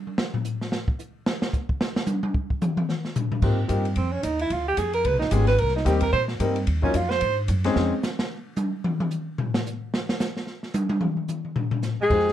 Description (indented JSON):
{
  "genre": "jazz, small-group swing and bop",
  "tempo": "222 BPM",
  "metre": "4/4",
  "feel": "swing 58% on 8ths",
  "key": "unclear",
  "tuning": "A4 = 440 Hz",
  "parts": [
    { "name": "open jazz drum kit", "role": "drums", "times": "0.1-12.3 s", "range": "crash cymbal, hi-hat, kick drum, ride cymbal, snare drum, toms", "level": "-26 LUFS", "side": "equal", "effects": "none" },
    { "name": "warm grand piano", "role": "accompaniment", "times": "3.4-7.9, 12.1-12.3 s", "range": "Gb3 to C5", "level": "-26 LUFS", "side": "left 4 dB", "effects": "none" },
    { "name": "upright bass", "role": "bass", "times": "3.4-7.9, 12.1-12.3 s", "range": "Ab1 to Bb2", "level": "-24 LUFS", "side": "equal", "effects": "none" },
    { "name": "mellow tenor saxophone", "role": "second line", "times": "4.0-7.4, 12.0-12.3 s", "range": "Ab3 to C5", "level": "-24 LUFS", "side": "right 3 dB", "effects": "none" },
    { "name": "breathy alto saxophone", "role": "melody", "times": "12.0-12.3 s", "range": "Ab4", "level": "-19 LUFS", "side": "left 2 dB", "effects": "none" }
  ],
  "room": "light reverb",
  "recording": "dark, warm production",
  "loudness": "-22 LUFS",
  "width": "side -11 dB against mid",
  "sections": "0.0-3.4 A section; 3.4-12.1 A section",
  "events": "tenor saxophone solo 0.0-12.1; drum solo 0.0-3.4, 7.8-12.1",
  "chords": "0.0 N.C.; 3.4 Abmaj13; 4.5 Ddim; 5.0 Db7#11; 5.6 Cm7; 6.7 Ebm9; 7.2 Ab7; 7.8 Dbmaj7; 8.8 N.C."
}